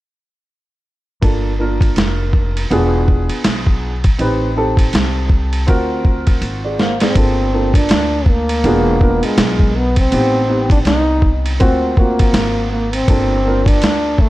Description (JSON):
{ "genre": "hip hop, jazz-hop", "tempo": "81 BPM", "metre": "4/4", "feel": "swing 60% on 16ths", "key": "G minor", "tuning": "A4 = 441 Hz", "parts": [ { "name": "dark baby grand piano", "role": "accompaniment", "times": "1.2-14.3 s", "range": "Bb3 to E#5", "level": "-20 LUFS", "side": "right 1 dB", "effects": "none" }, { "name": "upright bass", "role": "bass", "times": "1.2-14.3 s", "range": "E1 to D2", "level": "-19 LUFS", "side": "equal", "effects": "none" }, { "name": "lo-fi sampler-style drum kit", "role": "drums", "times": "1.2-14.3 s", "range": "hi-hat, kick drum, ride cymbal, snare drum", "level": "-16 LUFS", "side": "equal", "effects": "none" }, { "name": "mellow trombone", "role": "melody", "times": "6.8-14.3 s", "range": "G#3 to Eb4", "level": "-17 LUFS", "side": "equal", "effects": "none" } ], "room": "light reverb, small room ambience", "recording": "dark, warm production", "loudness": "-12 LUFS", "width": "side -16 dB against mid", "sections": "1.2-7.2 A section; 7.2-14.3 B section", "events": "drum fill 6.4-7.2", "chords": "1.2 Gm9; 2.7 E7b9; 4.2 Am7b5; 5.7 D7alt; 7.2 Gm9; 8.6 E7b9; 10.1 Am7b5; 11.6 D7alt; 13.1 Gm9" }